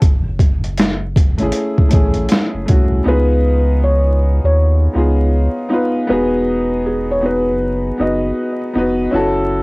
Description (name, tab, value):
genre	lo-fi hip hop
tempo	79 BPM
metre	4/4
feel	swing 63% on 16ths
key	unclear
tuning	A4 = 439 Hz
part	clear upright piano	accompaniment	0.0-9.6 s	A3 to B4	-17 LUFS	equal	cassette tape, low-pass filter
part	warm sub bass	bass	0.0-9.6 s	E1 to D#2	-17 LUFS	equal	none
part	trip hop sampler-style drum kit	drums	0.0-2.9 s	hi-hat, kick drum, snare drum	-13 LUFS	equal	overdrive, cassette tape
part	felt-muted upright piano	melody	3.1-8.6 s	G#4 to D#5	-20 LUFS	equal	low-pass filter, cassette tape, analog delay, plate reverb
room	light reverb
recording	home recording on cassette, vinyl crackle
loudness	-13 LUFS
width	side -27 dB against mid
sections	0.0-3.1 A section; 3.1-9.6 B section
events	none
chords	0.0 F#m9; 3.1 C#7; 6.1 Emaj7